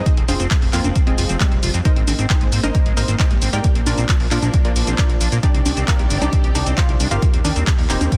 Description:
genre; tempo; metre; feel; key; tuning
uplifting trance; 134 BPM; 4/4; straight; C minor; A4 = 441 Hz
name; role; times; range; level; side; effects
unison pluck; melody; 0.0-8.1 s; G3 to G5; -28 LUFS; equal; sidechain pumping, delay
dark studio string section; sustained chords; 0.0-8.2 s; C3 to D5; -32 LUFS; equal; sidechain pumping
liquid acid bass; arpeggios; 0.1-8.2 s; Ab3 to G4; -32 LUFS; equal; subtle chorus, sidechain pumping, delay
electronic kick drum; drums; 0.1-8.2 s; none; -20 LUFS; equal; none
punchy analog drum machine; drums; 0.1-8.2 s; congas, handclaps, hi-hat, shaker; -26 LUFS; equal; sidechain pumping on hats, sidechain pumping on cymbals, sidechain pumping on perc
fat analog bass; bass; 0.2-8.1 s; Eb1 to Bb2; -23 LUFS; equal; sidechain pumping
room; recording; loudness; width
little or no reverb; dense, heavily limited modern master; -17 LUFS; mono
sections
0.0-8.2 A section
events
none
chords
0.1 Fm; 1.9 Abadd9; 3.6 Bb; 5.4 Cmadd9; 7.2 Eb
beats
| 0.06 0.51 0.96 1.40 | 1.85 2.30 2.75 3.19 | 3.64 4.09 4.54 4.99 | 5.43 5.88 6.33 6.78 | 7.22 7.67 8.12

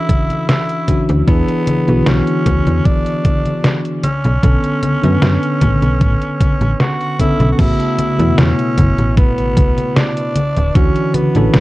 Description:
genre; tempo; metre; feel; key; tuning
vaporwave; 76 BPM; 4/4; straight; A major; A4 = 440 Hz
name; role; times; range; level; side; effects
raspy tenor saxophone; melody; 0.0-11.6 s; B3 to F#4; -21 LUFS; equal; tape echo
bell-like tine electric piano; accompaniment; 0.0-11.6 s; B2 to B4; -18 LUFS; equal; wide subtle chorus, vintage 12-bit sampler grit
detuned 8-bit digital drum machine; drums; 0.1-11.6 s; congas, crash cymbal, hi-hat, snare drum; -18 LUFS; left 1 dB; none
electronic kick drum; drums; 0.1-10.9 s; none; -15 LUFS; equal; none
slap-like FM bass; bass; 1.1-11.6 s; D1 to A2; -15 LUFS; equal; none
room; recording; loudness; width
little or no reverb; dark, warm production, cassette tape; -12 LUFS; side -18 dB against mid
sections
0.0-7.6 A section; 7.6-11.6 B section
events
none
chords
0.0 Dmaj9; 1.3 E7; 4.0 Bm9; 7.6 A69; 10.4 Dmaj9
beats
0.49 | 1.28 2.07 2.86 3.65 | 4.44 5.23 6.01 6.80 | 7.59 8.38 9.17 9.96 | 10.75 11.54

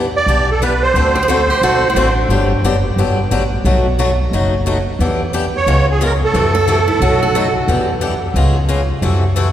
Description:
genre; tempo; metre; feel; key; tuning
acoustic string swing (jazz manouche); 178 BPM; 4/4; swing 60% on 8ths; E minor; A4 = 439 Hz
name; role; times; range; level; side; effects
picked swing-style acoustic guitar; accompaniment; 0.0-9.5 s; B2 to A4; -18 LUFS; left 2 dB; none
upright bass; bass; 0.0-9.5 s; F#1 to F#2; -16 LUFS; equal; none
musette accordion; melody; 0.2-2.1, 5.6-7.5 s; G#4 to D5; -17 LUFS; right 3 dB; none
picked steel-string acoustic guitar; second line; 1.2-2.6, 6.5-7.9 s; D4 to A4; -22 LUFS; right 2 dB; none
room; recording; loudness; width
wet cathedral reverb, RT60 4.1 s; recorded in a church or concert hall; -12 LUFS; side -11 dB against mid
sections
0.0-9.5 A section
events
none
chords
0.0 Em7; 0.9 D7; 2.3 Gmaj7; 3.6 B7; 5.0 Em7; 5.7 C#7; 6.3 F#m7b5; 7.0 B7; 7.7 Em7; 8.4 C#7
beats
0.27 0.61 | 0.95 1.28 1.62 1.96 | 2.30 2.64 2.97 3.31 | 3.65 3.98 4.32 4.66 | 5.00 5.33 5.67 6.00 | 6.34 6.68 7.01 7.35 | 7.69 8.02 8.36 8.70 | 9.03 9.37

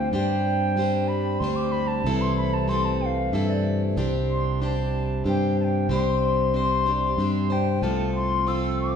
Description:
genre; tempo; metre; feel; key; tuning
acoustic folk duo or small band; 94 BPM; 3/4; straight; C major; A4 = 440 Hz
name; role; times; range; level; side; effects
mellow wooden flute; melody; 0.0-9.0 s; D5 to E6; -28 LUFS; equal; none
picked plugged-in steel-string acoustic guitar; accompaniment; 0.0-9.0 s; C3 to C5; -27 LUFS; left 2 dB; none
pedal harmonium; sustained chords; 0.0-9.0 s; C3 to G4; -34 LUFS; right 1 dB; none
fingered electric bass; bass; 0.0-9.0 s; C2 to G2; -25 LUFS; equal; none
room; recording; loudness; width
wet large studio reverb, RT60 1.3 s; band playing live in one room; -21 LUFS; side -7 dB against mid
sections
0.0-4.0 A section; 4.0-9.0 B section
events
flute solo 0.0-4.0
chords
0.1 Gsus4; 2.1 C6; 4.0 Csus2; 7.8 F/C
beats
| 0.13 0.77 1.41 | 2.05 2.70 3.34 | 3.98 4.62 5.26 | 5.91 6.55 7.19 | 7.83 8.47

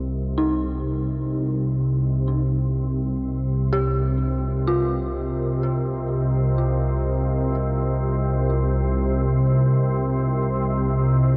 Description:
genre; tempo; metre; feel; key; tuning
dark ambient drone; free time; none; none; C minor; A4 = 441 Hz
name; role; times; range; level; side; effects
deep dark ambient pad; sustained chords; 0.0-11.4 s; C4 to Eb5; -34 LUFS; equal; chorus, built-in reverb
dark detuned synth bell; arpeggios; 0.0-11.4 s; C4 to G4; -31 LUFS; equal; chorus, delay
organ-like drone; drone; 0.0-11.4 s; C2 to C3; -23 LUFS; equal; ensemble chorus, built-in reverb
room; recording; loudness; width
wet cathedral reverb, RT60 6.2 s; dark, warm production; -23 LUFS; mono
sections
0.0-11.4 A section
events
fade-in on ambient pad 0.0-11.4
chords
0.0 Cm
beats
free time

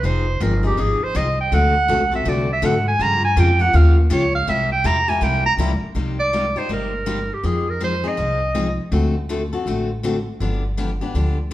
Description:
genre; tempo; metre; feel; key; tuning
acoustic string swing (jazz manouche); 162 BPM; 4/4; swing 63% on 8ths; C minor from 6.0 s; A4 = 438 Hz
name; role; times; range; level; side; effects
bright clarinet; melody; 0.0-8.8 s; G4 to Bb5; -20 LUFS; right 2 dB; none
picked steel-string acoustic guitar; accompaniment; 0.0-11.5 s; C3 to A4; -23 LUFS; left 2 dB; none
upright bass; bass; 0.0-11.5 s; F1 to Ab2; -20 LUFS; equal; none
room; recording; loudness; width
wet large studio reverb, RT60 1.3 s; band playing live in one room; -17 LUFS; side -14 dB against mid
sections
0.0-6.0 A section; 6.0-11.5 B section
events
clarinet solo 0.0-6.0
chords
0.0 Fm7; 1.5 D7; 3.0 Gm7b5; 4.5 C7; 6.0 Cm7; 7.4 Fm7; 8.9 D7; 10.4 G7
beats
| 0.04 0.41 0.78 1.15 | 1.52 1.89 2.26 2.63 | 3.00 3.37 3.74 4.11 | 4.48 4.84 5.21 5.59 | 5.96 6.33 6.70 7.07 | 7.44 7.81 8.18 8.55 | 8.92 9.29 9.67 10.04 | 10.41 10.78 11.15 11.52

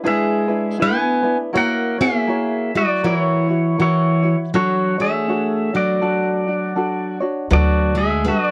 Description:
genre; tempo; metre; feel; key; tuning
Hawaiian; 80 BPM; 4/4; swing 60% on 8ths; unclear; A4 = 443 Hz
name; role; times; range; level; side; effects
tenor ukulele; accompaniment; 0.0-8.5 s; D4 to C#5; -26 LUFS; equal; none
pedal steel guitar; melody; 0.1-8.5 s; E4 to G#5; -22 LUFS; equal; none
picked plugged-in steel-string acoustic guitar; second line; 0.1-8.5 s; E3 to B3; -23 LUFS; equal; none
upright bass; bass; 7.5-8.3 s; D2; -20 LUFS; equal; none
room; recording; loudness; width
light reverb; dry, close 1970s-style studio recording; -19 LUFS; mono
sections
0.0-8.5 A section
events
none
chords
0.0 E7; 1.5 F#7; 4.5 Dmaj9#11/F#; 7.5 D6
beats
0.06 0.80 | 1.55 2.29 3.04 3.79 | 4.53 5.28 6.02 6.77 | 7.51 8.26

